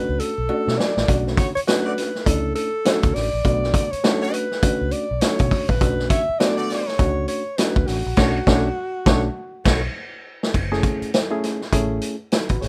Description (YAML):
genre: funk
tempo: 102 BPM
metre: 4/4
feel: swing 60% on 16ths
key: unclear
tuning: A4 = 441 Hz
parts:
  - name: breathy alto saxophone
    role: melody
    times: 0.0-9.9 s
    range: F#4 to E5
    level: -27 LUFS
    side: equal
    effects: none
  - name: barky reed electric piano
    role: stabs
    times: 0.0-12.7 s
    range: A3 to C#5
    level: -27 LUFS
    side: equal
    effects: overdrive
  - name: vintage muted fingered electric bass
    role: bass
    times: 0.1-12.7 s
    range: F#1 to B2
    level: -28 LUFS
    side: equal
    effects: none
  - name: vintage drum kit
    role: drums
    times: 0.2-12.7 s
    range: crash cymbal, hi-hat, kick drum, snare drum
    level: -23 LUFS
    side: equal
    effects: none
  - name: cowbell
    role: percussion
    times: 0.5-7.7 s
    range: none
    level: -38 LUFS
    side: equal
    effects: none
  - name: warm horn section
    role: second line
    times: 1.4-9.8 s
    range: A3 to D5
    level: -30 LUFS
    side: equal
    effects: none
room: light reverb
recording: rough home demo mix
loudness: -21 LUFS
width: mono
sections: 0.0-10.5 A section; 10.5-12.7 B section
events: drum fill 0.5-1.1, 10.0-10.5; band accent 8.2-10.5; reed electric piano fill 9.4-10.5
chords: 0.0 Bm9; 10.5 F#m9